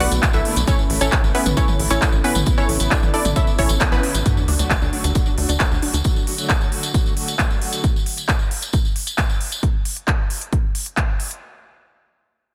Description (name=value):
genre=uplifting trance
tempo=134 BPM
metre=4/4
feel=straight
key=D major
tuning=A4 = 441 Hz
part: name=unison pluck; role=melody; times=0.0-4.2 s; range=B3 to F#5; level=-26 LUFS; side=equal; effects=sidechain pumping, dub echo
part: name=analog pluck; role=second line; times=0.0-4.2 s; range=B4 to F#5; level=-32 LUFS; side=equal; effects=chorus, sidechain pumping, dub echo
part: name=warm studio string section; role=sustained chords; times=0.0-7.8 s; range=C#3 to F#4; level=-31 LUFS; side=equal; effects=sidechain pumping, low-pass filter
part: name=tight sequencer bass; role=bass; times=0.0-6.0 s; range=A1 to D2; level=-24 LUFS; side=equal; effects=tube saturation, sidechain pumping
part: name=big-room dance drum kit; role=drums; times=0.0-11.4 s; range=handclaps, hi-hat, toms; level=-26 LUFS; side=equal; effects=overdrive, sidechain pumping on hats, sidechain pumping on toms
part: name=tambourine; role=percussion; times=0.1-9.6 s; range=none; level=-31 LUFS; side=equal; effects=none
part: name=electronic kick drum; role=drums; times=0.2-11.1 s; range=none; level=-22 LUFS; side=equal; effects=none
part: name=unison pluck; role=arpeggios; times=4.3-6.0 s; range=D4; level=-32 LUFS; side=equal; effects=phaser, sidechain pumping, dub echo
part: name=sub drop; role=sound effects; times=4.3-6.0 s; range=none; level=-31 LUFS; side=equal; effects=none
room=light reverb, digital ambience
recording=dense, heavily limited modern master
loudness=-19 LUFS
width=mono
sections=0.0-4.3 A section; 4.3-11.4 B section; 11.4-12.5 C section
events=drop 0.0-4.3; band accent 3.8; impact 4.3-6.0; filter sweep on synth arpeggio sound 4.3-6.0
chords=0.0 Bm7; 0.7 A; 4.3 D; 7.8 N.C.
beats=0.23 | 0.68 1.12 1.57 2.02 | 2.47 2.91 3.36 3.81 | 4.26 4.70 5.15 5.60 | 6.05 6.50 6.94 7.39 | 7.84 8.29 8.73 9.18 | 9.63 10.08 10.53 10.97